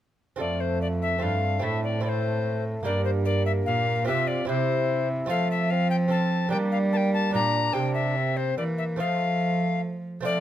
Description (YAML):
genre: classical, renaissance-style consort dance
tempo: 147 BPM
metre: 3/4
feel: straight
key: F major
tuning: A4 = 440 Hz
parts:
  - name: alto recorder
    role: melody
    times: 0.4-10.4 s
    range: C5 to Bb5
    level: -28 LUFS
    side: left 5 dB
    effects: none
  - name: lute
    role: accompaniment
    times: 0.4-10.4 s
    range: F2 to Bb4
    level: -31 LUFS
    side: right 6 dB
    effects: none
  - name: mellow bassoon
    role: accompaniment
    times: 0.4-10.4 s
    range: A3 to F4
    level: -32 LUFS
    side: left 2 dB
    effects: none
  - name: rich cello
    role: bass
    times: 0.4-10.4 s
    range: F2 to G3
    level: -27 LUFS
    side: right 2 dB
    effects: none
room: light reverb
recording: close, detailed microphones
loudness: -23 LUFS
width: side -12 dB against mid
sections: 0.4-10.2 A section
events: none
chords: 0.4 F; 1.6 Am; 2.9 Gm; 4.1 Csus4; 4.5 C; 5.3 F; 6.5 Gm; 7.8 C7; 9.0 F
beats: | 0.40 0.81 1.22 | 1.63 2.04 2.45 | 2.86 3.27 3.67 | 4.08 4.49 4.90 | 5.30 5.71 6.12 | 6.53 6.94 7.35 | 7.75 8.17 8.58 | 8.99 9.41 9.82 | 10.24